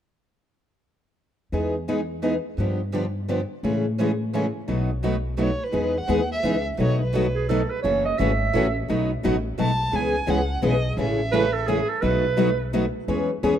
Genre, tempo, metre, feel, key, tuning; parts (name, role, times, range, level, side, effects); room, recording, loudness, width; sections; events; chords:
acoustic string swing (jazz manouche); 172 BPM; 3/4; swing 62% on 8ths; E major; A4 = 444 Hz
picked steel-string acoustic guitar; accompaniment; 1.5-13.5 s; B2 to G#4; -25 LUFS; left 4 dB
picked steel-string acoustic guitar; accompaniment; 1.5-13.5 s; B2 to C#5; -29 LUFS; right 8 dB
upright bass; bass; 1.5-13.6 s; F#1 to A2; -27 LUFS; equal
warm violin; melody; 5.4-11.9 s; B4 to A5; -29 LUFS; right 1 dB
bright clarinet; second line; 7.4-8.9, 11.3-12.7 s; G#4 to E5; -26 LUFS; right 5 dB
light reverb, studio ambience; rough home demo mix; -21 LUFS; side -10 dB against mid
1.5-5.7 A section; 5.7-13.6 B section
1.5 Emaj7; 2.6 G7; 3.6 Amaj7; 4.7 B7; 5.7 Emaj7; 6.8 B7; 7.8 F#m7; 8.9 B7; 9.9 C#m11; 11.0 Amaj7; 12.0 B7; 13.1 E6